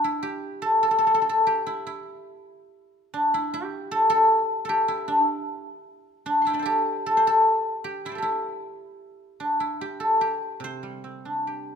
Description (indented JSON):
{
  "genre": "chinese traditional, Chinese solo plucked strings",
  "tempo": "75 BPM",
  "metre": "4/4",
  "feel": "rubato",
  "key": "C gong mode",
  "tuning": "A4 = 441 Hz",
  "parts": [
    { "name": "guzheng", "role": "solo", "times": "0.0-11.8 s", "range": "C3 to C6", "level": "-22 LUFS", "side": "left 1 dB", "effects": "none" }
  ],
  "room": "light reverb",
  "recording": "minimal, uncompressed stereo recording",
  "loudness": "-21 LUFS",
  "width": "side -7 dB against mid",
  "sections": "0.0-11.8 A section",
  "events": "none",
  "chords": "none"
}